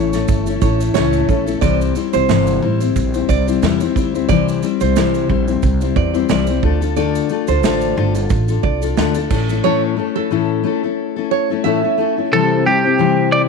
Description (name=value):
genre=acoustic pop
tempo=90 BPM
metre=4/4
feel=swing 55% on 16ths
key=unclear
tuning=A4 = 442 Hz
part: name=twelve-string electric guitar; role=melody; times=0.0-0.9, 12.3-13.4 s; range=G4 to D5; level=-16 LUFS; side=right 3 dB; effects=none
part: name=fingerpicked steel-string acoustic guitar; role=accompaniment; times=0.0-13.5 s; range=A2 to C5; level=-17 LUFS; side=left 12 dB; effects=none
part: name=mellow tonewheel organ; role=sustained chords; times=0.0-1.6, 12.3-13.5 s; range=C3 to G4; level=-25 LUFS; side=right 2 dB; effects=chorus vibrato, lush chorus
part: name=upright bass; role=bass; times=0.0-9.6 s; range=G1 to E2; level=-20 LUFS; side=right 2 dB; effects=none
part: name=natural country drum kit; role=drums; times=0.1-9.6 s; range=crash cymbal, kick drum, shaker, snare drum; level=-22 LUFS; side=right 5 dB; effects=none
part: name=nylon-string guitar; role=arpeggios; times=0.6-12.1 s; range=A4 to E5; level=-22 LUFS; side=right 12 dB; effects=none
room=moderate plate reverb, RT60 2.0 s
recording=1960s-style stereo with parts hard left and right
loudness=-14 LUFS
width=side -4 dB against mid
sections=0.0-1.6 A section; 1.6-12.3 B section; 12.3-13.5 A section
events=none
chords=0.0 A; 1.6 C; 6.6 Dm; 9.3 A; 12.3 C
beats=0.29 0.95 | 1.62 2.29 2.96 3.62 | 4.29 4.96 5.63 6.30 | 6.97 7.63 8.30 8.97 | 9.64 10.31 10.98 11.65 | 12.31 12.98